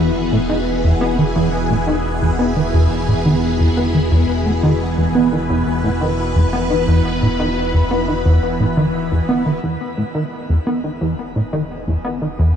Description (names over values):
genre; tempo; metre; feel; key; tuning
ambient, sequencer-driven space music; 87 BPM; 4/4; straight; E major; A4 = 440 Hz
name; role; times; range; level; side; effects
phased string machine; sustained chords; 0.0-12.6 s; E3 to B4; -20 LUFS; equal; ensemble chorus, phaser
plucky analog bass; riff; 0.0-12.5 s; E2 to B3; -17 LUFS; equal; lush chorus, ping-pong delay
fat analog bass; bass; 0.0-12.6 s; E1; -24 LUFS; equal; tube saturation
bubbling stepped-filter texture; texture; 9.6-12.6 s; G#5; -48 LUFS; equal; none
room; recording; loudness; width
moderate shimmer reverb, RT60 7.0 s; dark, warm production; -15 LUFS; side -8 dB against mid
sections
0.0-9.6 A section; 9.6-12.6 B section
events
none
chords
0.0 E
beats
0.67 | 1.36 2.05 2.74 3.43 | 4.12 4.81 5.50 6.19 | 6.88 7.57 8.26 8.94 | 9.63 10.32 11.01 11.70 | 12.39